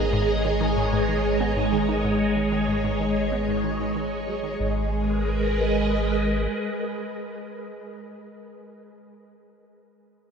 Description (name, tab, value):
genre	ambient, sequencer-driven space music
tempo	94 BPM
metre	4/4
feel	straight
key	G# minor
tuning	A4 = 440 Hz
part	phased string machine	sustained chords	0.0-7.9 s	G#3 to A#5	-24 LUFS	right 1 dB	ensemble chorus, phaser
part	vibraphone with soft mallets	arpeggios	0.0-4.9 s	G#3 to G#5	-36 LUFS	right 1 dB	none
part	hollow square pluck	riff	0.0-4.9 s	G#2 to D#4	-31 LUFS	left 1 dB	chorus, phaser, ping-pong delay
part	warm sub bass	bass	0.0-6.5 s	G#1	-28 LUFS	equal	none
room	wet cathedral reverb, RT60 5.6 s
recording	in a vast, echoing space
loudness	-22 LUFS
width	side -6 dB against mid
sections	0.0-4.6 A section; 4.6-7.1 B section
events	fade-out on synth arpeggio sound 0.0-4.6; fade-out on vibraphone 0.0-4.6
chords	0.0 G#madd9